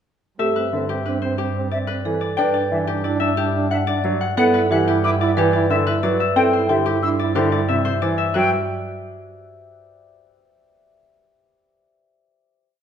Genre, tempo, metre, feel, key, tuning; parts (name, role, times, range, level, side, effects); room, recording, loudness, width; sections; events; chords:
classical, minimalist pattern music; 181 BPM; 6/4; straight; G major; A4 = 440 Hz
concert harp; melody; 0.4-10.4 s; G4 to G5; -23 LUFS; left 8 dB
warm French horn; second line; 0.4-8.1 s; C4 to E4; -25 LUFS; right 4 dB
clear grand piano; accompaniment; 0.4-8.5 s; C3 to D4; -24 LUFS; left 2 dB
marimba with medium mallets; arpeggios; 0.4-8.5 s; D4 to D5; -24 LUFS; right 5 dB
warm double bass; bass; 0.4-8.5 s; G2; -26 LUFS; right 3 dB
bright concert flute; arpeggios; 0.7-8.5 s; E5 to E6; -26 LUFS; left 1 dB
moderate recital hall reverb, RT60 1.4 s; -17 LUFS; side -8 dB against mid
0.4-8.4 A section; 8.4-10.3 final chord
0.4 Am11/G; 2.4 Em7/G; 4.4 G6; 6.4 C/G; 8.4 G5